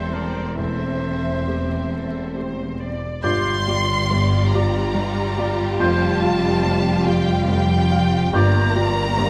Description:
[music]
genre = cinematic, emotional film score for orchestra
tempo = 70 BPM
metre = 3/4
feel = uneven beats, rubato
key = unclear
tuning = A4 = 443 Hz
[part]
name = rich studio violin section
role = melody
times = 0.0-9.3 s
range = D5 to C6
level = -29 LUFS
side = equal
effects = none
[part]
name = clear oboe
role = second line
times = 0.0-8.7 s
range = Bb4 to D5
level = -33 LUFS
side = equal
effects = none
[part]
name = rich studio violin section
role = second line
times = 0.0-9.3 s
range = C4 to F5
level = -34 LUFS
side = equal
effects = none
[part]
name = rich studio viola section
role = accompaniment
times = 0.0-9.3 s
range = G3 to D5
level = -32 LUFS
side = equal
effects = none
[part]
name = warm baby grand piano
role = accompaniment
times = 0.0-9.3 s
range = E1 to F5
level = -27 LUFS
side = equal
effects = none
[part]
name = mellow French horn section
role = sustained chords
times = 0.0-9.3 s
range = G3 to F4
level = -31 LUFS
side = equal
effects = none
[part]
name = rich studio cello section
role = bass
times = 0.0-9.3 s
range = E2 to G2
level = -27 LUFS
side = equal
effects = none
[part]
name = rich studio double bass section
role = bass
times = 0.0-9.3 s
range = E1 to G1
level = -28 LUFS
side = equal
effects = none
[part]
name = concert flute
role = second line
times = 3.2-8.7 s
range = G6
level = -30 LUFS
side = equal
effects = none
[part]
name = dark clarinet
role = second line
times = 3.2-8.7 s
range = F4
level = -29 LUFS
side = equal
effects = none
[sound]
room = moderate scoring stage reverb, RT60 1.6 s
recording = vinyl crackle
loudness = -20 LUFS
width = mono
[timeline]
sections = 0.0-3.2 A section; 3.2-9.3 B section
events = none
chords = 0.0 Am7/E; 3.2 Gm7; 5.8 Fadd9; 8.3 Gm7

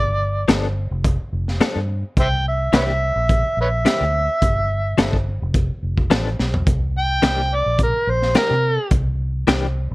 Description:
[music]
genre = straight-eighth soul blues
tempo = 107 BPM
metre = 4/4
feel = swing 54% on 16ths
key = unclear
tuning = A4 = 440 Hz
[part]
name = overdriven harmonica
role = melody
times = 0.0-8.9 s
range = Bb4 to G5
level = -20 LUFS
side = right 1 dB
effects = none
[part]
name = vintage muted fingered electric bass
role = bass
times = 0.0-9.9 s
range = F1 to C3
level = -22 LUFS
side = equal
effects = none
[part]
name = direct-recorded clean electric guitar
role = stabs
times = 0.5-9.7 s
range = E3 to A4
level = -21 LUFS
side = left 5 dB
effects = tremolo
[part]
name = crunchy breakbeat drum kit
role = drums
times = 0.5-9.6 s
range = hi-hat, kick drum, snare drum, toms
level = -20 LUFS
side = equal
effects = none
[sound]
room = little or no reverb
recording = none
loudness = -17 LUFS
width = side -20 dB against mid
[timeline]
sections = 0.0-9.9 A section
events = drum fill 6.4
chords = 0.0 G9; 2.2 C9; 4.4 G9; 6.7 C9

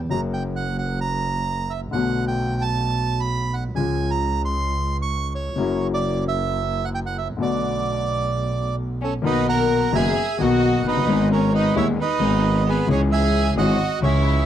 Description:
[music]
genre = tango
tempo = 132 BPM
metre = 4/4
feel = rubato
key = B minor, B major from 9.2 s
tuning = A4 = 438 Hz
[part]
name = warm grand piano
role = accompaniment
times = 0.0-14.5 s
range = D#1 to G#4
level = -24 LUFS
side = left 4 dB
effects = none
[part]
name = bandoneon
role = melody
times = 0.1-14.5 s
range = G#4 to C#6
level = -25 LUFS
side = right 6 dB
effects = none
[part]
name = clear double bass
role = bass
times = 0.1-14.5 s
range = F#1 to D#2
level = -24 LUFS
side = right 2 dB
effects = none
[part]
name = rich studio violin section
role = second line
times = 9.0-14.5 s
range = B3 to A#4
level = -26 LUFS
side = left 4 dB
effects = none
[sound]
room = little or no reverb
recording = dry, close 1970s-style studio recording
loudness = -19 LUFS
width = side -10 dB against mid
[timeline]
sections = 0.0-9.2 A section; 9.2-14.5 B section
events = none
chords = 0.1 F#; 1.9 Bm7; 3.8 C#; 5.6 F#7; 7.4 Bm7; 9.2 Bmaj7; 11.1 G#m; 12.9 C#m

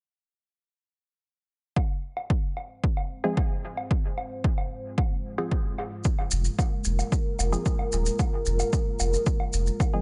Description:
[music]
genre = dub techno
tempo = 112 BPM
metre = 4/4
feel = straight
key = F minor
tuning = A4 = 437 Hz
[part]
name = dark analog pad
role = sustained chords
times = 3.1-10.0 s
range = Ab3 to C5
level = -36 LUFS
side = equal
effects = chorus, phaser, sidechain pumping
[part]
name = electronic kick drum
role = drums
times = 1.8-9.9 s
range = none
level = -28 LUFS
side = equal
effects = overdrive
[part]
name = woodblock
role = percussion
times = 1.8-9.9 s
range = none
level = -39 LUFS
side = equal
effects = sidechain pumping on perc, dub echo
[part]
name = filtered dub chord stab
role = stabs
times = 3.2-10.0 s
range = F3 to Ab4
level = -34 LUFS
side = equal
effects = chorus, phaser, sidechain pumping, dub echo
[part]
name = maracas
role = percussion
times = 6.0-9.9 s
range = none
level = -36 LUFS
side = equal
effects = none
[part]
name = warm sub bass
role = bass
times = 6.3-9.7 s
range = Eb1 to F1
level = -28 LUFS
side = equal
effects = sidechain pumping
[sound]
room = digital ambience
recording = nothing above 10.5 kHz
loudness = -27 LUFS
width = mono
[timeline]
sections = 1.8-10.0 A section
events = filter sweep on synth stab 1.8-10.0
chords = 1.8 Fm

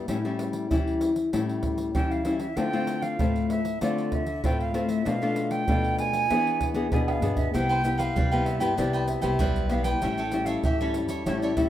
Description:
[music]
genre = samba and choro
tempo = 96 BPM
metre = 4/4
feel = straight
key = C major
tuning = A4 = 436 Hz
[part]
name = nylon-string guitar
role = accompaniment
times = 0.0-11.7 s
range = A2 to G#4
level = -26 LUFS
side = left 3 dB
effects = plate reverb
[part]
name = surdo, pandeiro, tamborim and maracas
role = percussion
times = 0.1-11.7 s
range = none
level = -30 LUFS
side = right 2 dB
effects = none
[part]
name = breathy silver concert flute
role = melody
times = 1.9-11.7 s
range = C#5 to G#5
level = -30 LUFS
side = right 4 dB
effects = plate reverb, tape echo
[part]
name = cavaquinho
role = accompaniment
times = 7.5-11.6 s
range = E4 to G5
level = -32 LUFS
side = right 1 dB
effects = plate reverb
[part]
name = upright bass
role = bass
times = 7.5-11.7 s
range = A1 to C3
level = -31 LUFS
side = right 1 dB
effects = none
[sound]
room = wet studio reverb, RT60 0.6 s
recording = rough home demo mix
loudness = -23 LUFS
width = side -12 dB against mid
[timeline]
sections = 0.0-7.5 A section; 7.5-11.7 B section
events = drum fill 7.1-7.5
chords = 0.1 A7; 2.6 Dm7; 5.1 Bm7b5; 6.3 E7; 7.5 Cmaj7; 10.0 A7

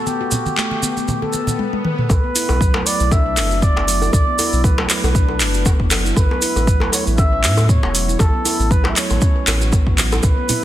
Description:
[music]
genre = afro house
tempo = 118 BPM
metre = 4/4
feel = swing 55% on 16ths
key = B minor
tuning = A4 = 440 Hz
[part]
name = trumpet with bucket mute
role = melody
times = 0.0-10.6 s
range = G4 to E5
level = -23 LUFS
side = right 1 dB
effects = dub echo
[part]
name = handpan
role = arpeggios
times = 0.1-10.6 s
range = F#3 to B4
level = -24 LUFS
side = equal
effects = vintage 12-bit sampler grit, sidechain pumping, dub echo
[part]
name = congas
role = percussion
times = 0.1-1.6, 10.2-10.6 s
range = none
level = -25 LUFS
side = right 2 dB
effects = none
[part]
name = maracas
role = percussion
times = 0.1-10.6 s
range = none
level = -24 LUFS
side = right 4 dB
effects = none
[part]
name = afro-pop drum kit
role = drums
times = 0.6-10.6 s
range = handclaps, hi-hat, toms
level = -22 LUFS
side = equal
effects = none
[part]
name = swell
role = sound effects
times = 1.2-2.1 s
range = none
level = -29 LUFS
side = left 2 dB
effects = none
[part]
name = warm sub bass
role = bass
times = 2.1-10.3 s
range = E1 to A2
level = -20 LUFS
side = equal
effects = sidechain pumping
[part]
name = electronic kick drum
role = drums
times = 2.1-10.3 s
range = none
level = -16 LUFS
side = equal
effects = none
[part]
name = djembe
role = percussion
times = 2.1-10.3 s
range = none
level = -26 LUFS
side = left 2 dB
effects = none
[sound]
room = light reverb, studio reverb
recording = dense, heavily limited modern master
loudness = -14 LUFS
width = side -13 dB against mid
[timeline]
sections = 0.0-2.1 A section; 2.1-10.6 B section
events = filter sweep on handpan 0.0-2.1; filter sweep 0.0-2.1; swell 1.2-2.1; drum fill 1.6-2.1; drop 2.1-10.6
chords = 0.0 B5; 2.1 Bm; 6.2 A

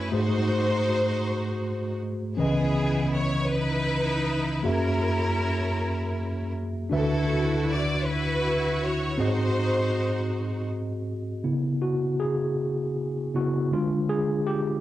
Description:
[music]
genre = gospel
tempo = 53 BPM (dotted quarters)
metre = 6/8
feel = straight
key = C# minor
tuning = A4 = 439 Hz
[part]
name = bright studio string section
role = melody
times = 0.0-10.7 s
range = B3 to D5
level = -28 LUFS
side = equal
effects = cassette tape
[part]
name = tine electric piano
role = accompaniment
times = 0.0-14.8 s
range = C#2 to E5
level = -25 LUFS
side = equal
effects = medium stereo tremolo, cassette tape
[sound]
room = moderate spring reverb, RT60 1.3 s, studio ambience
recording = home recording on cassette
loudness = -24 LUFS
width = side -14 dB against mid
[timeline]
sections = 0.0-11.5 A section; 11.5-14.8 B section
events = tine electric piano solo 11.5-14.8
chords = 0.1 G#7b9; 2.4 C#m9; 4.6 F#9; 6.9 D69; 9.2 G#7; 11.5 C#m7; 13.7 Ddim

